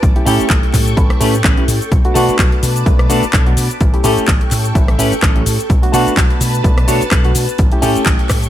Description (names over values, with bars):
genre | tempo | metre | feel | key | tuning
filtered disco house | 127 BPM | 4/4 | swing 55% on 16ths | unclear | A4 = 440 Hz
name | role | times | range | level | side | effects
string machine, full ensemble | sustained chords | 0.0-8.5 s | A4 to D6 | -24 LUFS | equal | phaser, ensemble chorus, sidechain pumping, low-pass filter
slap bass with an envelope filter | bass | 0.0-8.5 s | A1 to B2 | -18 LUFS | equal | sidechain pumping, low-pass filter
electronic kick drum | drums | 0.0-8.4 s | none | -14 LUFS | equal | studio reverb
house drum kit | drums | 0.0-8.5 s | handclaps, hi-hat, rim click, shaker | -20 LUFS | left 1 dB | sidechain pumping on hats, studio reverb, sidechain pumping on perc
reed electric piano | accompaniment | 0.2-8.5 s | A3 to B4 | -18 LUFS | equal | phaser, vintage 12-bit sampler grit, sidechain pumping, low-pass filter
clean electric guitar | riff | 0.3-8.3 s | C#4 to C#5 | -22 LUFS | left 1 dB | vintage 12-bit sampler grit, sidechain pumping, low-pass filter
maracas | percussion | 1.9-8.5 s | none | -35 LUFS | left 6 dB | none
room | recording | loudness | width
digital ambience | none | -11 LUFS | side -12 dB against mid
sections
0.0-8.5 A section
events
none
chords
0.0 A7; 1.9 Bm7; 3.8 A7; 5.7 Bm7; 7.6 A7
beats
| 0.03 0.50 0.97 1.45 | 1.92 2.39 2.86 3.34 | 3.81 4.28 4.75 5.23 | 5.70 6.17 6.64 7.12 | 7.59 8.06